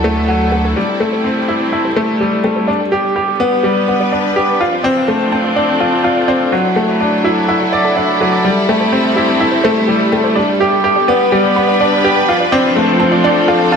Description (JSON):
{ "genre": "piano and strings electronica", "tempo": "125 BPM", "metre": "4/4", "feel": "straight", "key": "A minor", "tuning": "A4 = 440 Hz", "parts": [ { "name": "rich studio string section", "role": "sustained chords", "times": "0.0-13.8 s", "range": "F3 to B4", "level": "-17 LUFS", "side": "equal", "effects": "none" }, { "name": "wide unison pluck", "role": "arpeggios", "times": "0.0-13.8 s", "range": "F#4 to B5", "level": "-22 LUFS", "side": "right 4 dB", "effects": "none" }, { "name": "bright upright piano", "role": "riff", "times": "0.0-13.8 s", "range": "F#3 to D5", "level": "-13 LUFS", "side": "left 1 dB", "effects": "ping-pong delay" }, { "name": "warm sub bass", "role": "bass", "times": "0.0-0.7 s", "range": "D2", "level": "-19 LUFS", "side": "right 1 dB", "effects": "none" } ], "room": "wet scoring stage reverb, RT60 2.0 s, small room ambience", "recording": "none", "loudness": "-11 LUFS", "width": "side -6 dB against mid", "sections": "0.8-13.8 A section", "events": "build-up 0.8-13.8", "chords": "0.0 Dadd9; 0.8 Am7; 2.7 G; 4.6 F6; 6.5 Dadd9; 8.4 Am7; 10.4 G; 12.3 F6" }